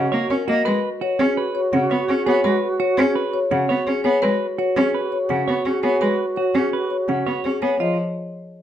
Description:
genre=classical, minimalist pattern music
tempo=168 BPM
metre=5/4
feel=straight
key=unclear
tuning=A4 = 439 Hz
part: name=marimba with medium mallets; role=melody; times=0.0-8.0 s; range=Ab4 to Gb5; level=-22 LUFS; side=left 4 dB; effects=none
part: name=bright alto flute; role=second line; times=0.0-7.6 s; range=Gb4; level=-26 LUFS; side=right 3 dB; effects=none
part: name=rich cello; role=accompaniment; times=0.0-8.0 s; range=Db3 to Db4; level=-22 LUFS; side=right 1 dB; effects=none
part: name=clean electric guitar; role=arpeggios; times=0.0-8.0 s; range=Db4 to Db5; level=-26 LUFS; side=right 7 dB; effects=none
room=moderate large studio reverb, RT60 0.9 s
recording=none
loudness=-18 LUFS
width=side -10 dB against mid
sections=0.0-7.8 A section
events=none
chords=0.0 Ebm; 0.7 Db7sus4; 7.8 Ebsus2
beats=0.30 | 0.66 1.01 1.37 1.73 2.08 | 2.44 2.80 3.16 3.51 3.87 | 4.23 4.58 4.94 5.30 5.66 | 6.01 6.37 6.73 7.08 7.44 | 7.80

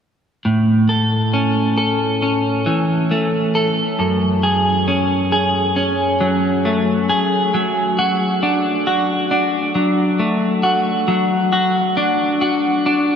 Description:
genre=rock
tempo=68 BPM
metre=4/4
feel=straight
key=A major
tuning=A4 = 441 Hz
part: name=clean electric guitar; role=arpeggios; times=0.5-13.2 s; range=F#2 to A4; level=-15 LUFS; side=equal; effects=lush chorus, tape echo
room=wet huge ambient reverb, RT60 8.4 s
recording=dreamy mix soaked in reverb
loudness=-15 LUFS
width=side -7 dB against mid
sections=0.5-13.2 A section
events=none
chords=0.5 A; 4.0 F#madd9; 7.5 D/F#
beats=| 0.45 1.34 2.22 3.11 | 4.00 4.88 5.77 6.66 | 7.54 8.43 9.31 10.20 | 11.09 11.97 12.86

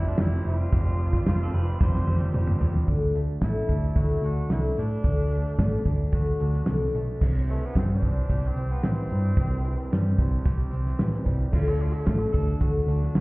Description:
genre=folk rock and heartland rock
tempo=111 BPM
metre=4/4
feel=straight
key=unclear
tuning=A4 = 435 Hz
part: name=bright tenor saxophone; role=melody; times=0.0-12.6 s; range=A3 to A4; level=-36 LUFS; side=equal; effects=none
part: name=picked twelve-string acoustic guitar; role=accompaniment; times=0.0-13.2 s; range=C3 to C5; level=-34 LUFS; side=left 4 dB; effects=none
part: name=electric guitar through a small old amp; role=riff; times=0.0-13.2 s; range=C3 to G4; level=-35 LUFS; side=right 2 dB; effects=none
part: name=hollow-body short-scale picked electric bass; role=bass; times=0.0-13.2 s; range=F1 to A2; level=-24 LUFS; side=equal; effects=none
part: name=damped 70s drum kit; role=drums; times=0.2-13.2 s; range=crash cymbal, hi-hat, kick drum, ride cymbal, snare drum, toms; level=-25 LUFS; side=equal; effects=none
part: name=pedal steel guitar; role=second line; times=1.3-2.7 s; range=F4 to C5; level=-39 LUFS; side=right 3 dB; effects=none
room=studio ambience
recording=heard muffled through a wall, stone room reverb, EQ, nothing above 7.6 kHz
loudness=-22 LUFS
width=side -22 dB against mid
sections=0.0-2.9 A section; 2.9-13.2 B section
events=drum fill 1.8-2.9; tenor saxophone solo 2.9-13.2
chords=0.0 Fsus2; 2.9 D; 7.2 C; 11.5 D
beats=0.19 | 0.73 1.26 1.80 2.34 | 2.88 3.42 3.96 4.50 | 5.04 5.59 6.13 6.67 | 7.21 7.75 8.29 8.83 | 9.37 9.91 10.45 10.99 | 11.53 12.07 12.61 13.15

